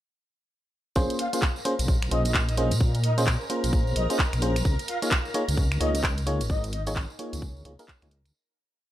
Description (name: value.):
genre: UK garage, two-step garage.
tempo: 130 BPM.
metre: 4/4.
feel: swing 61% on 16ths.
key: Bb minor.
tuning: A4 = 443 Hz.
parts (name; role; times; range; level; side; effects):
soft string machine; sustained chords; 1.6-8.4 s; Bb4 to Bb5; -38 LUFS; equal; ensemble chorus, sidechain pumping.
FM electric piano; stabs; 1.0-8.1 s; Bb3 to Db5; -30 LUFS; equal; chorus, vintage 12-bit sampler grit, dub echo.
deep soft wobble bass; bass; 1.0-8.3 s; Ab1 to Bb2; -26 LUFS; equal; chorus, sidechain pumping.
electronic kick drum; drums; 1.0-8.0 s; none; -25 LUFS; equal; studio reverb.
tambourine; percussion; 1.0-8.3 s; none; -39 LUFS; right 2 dB; none.
garage drum kit; drums; 1.1-8.3 s; finger snaps, handclaps, hi-hat; -30 LUFS; equal; studio reverb.
breathy flute-like synth lead; melody; 1.2-6.9 s; Eb5 to F5; -34 LUFS; equal; ensemble chorus, dub echo.
room: light reverb.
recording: dark, warm production.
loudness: -23 LUFS.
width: side -13 dB against mid.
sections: 1.0-8.3 drop.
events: drop 1.0-8.3; fade-out 5.9-8.3.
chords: 1.0 Bbm9; 4.7 Db6.